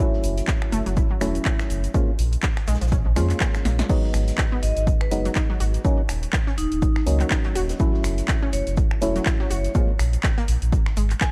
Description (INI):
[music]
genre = deep house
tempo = 123 BPM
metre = 4/4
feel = swing 57% on 16ths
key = unclear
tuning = A4 = 441 Hz
[part]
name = analog pluck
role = arpeggios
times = 0.0-11.0 s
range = E#3 to F#4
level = -34 LUFS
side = equal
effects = chorus, vintage 12-bit sampler grit, sidechain pumping, tape echo
[part]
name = percussive organ stab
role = stabs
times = 0.0-9.9 s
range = F#3 to E#4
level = -30 LUFS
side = equal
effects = lush chorus, sidechain pumping, tape echo
[part]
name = house drum kit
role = drums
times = 0.0-11.3 s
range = crash cymbal, finger snaps, handclaps, hi-hat, shaker, snare drum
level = -32 LUFS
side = equal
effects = none
[part]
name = vintage drum kit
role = drums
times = 0.1-11.3 s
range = hi-hat, shaker, snare drum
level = -45 LUFS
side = equal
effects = none
[part]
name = sub bass with octave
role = bass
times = 0.2-11.1 s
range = D#1 to E#2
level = -25 LUFS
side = equal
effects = sidechain pumping
[part]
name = electronic kick drum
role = drums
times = 0.5-11.3 s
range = none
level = -25 LUFS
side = equal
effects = none
[part]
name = vibraphone with medium hard mallets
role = melody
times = 4.6-11.3 s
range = D#4 to G#5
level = -32 LUFS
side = equal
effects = tape echo
[sound]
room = little or no reverb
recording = cassette tape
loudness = -22 LUFS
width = mono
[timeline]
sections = 0.0-3.9 A section; 3.9-11.3 B section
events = drum fill 3.7; drop 3.9-11.3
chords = 0.0 F#m7; 1.9 A#m7; 3.9 G#m7; 5.8 D#m7; 7.8 F#m7; 9.7 A#m7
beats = 0.48 0.97 1.46 | 1.94 2.43 2.92 3.41 | 3.90 4.38 4.87 5.36 | 5.85 6.33 6.82 7.31 | 7.80 8.29 8.77 9.26 | 9.75 10.24 10.72 11.21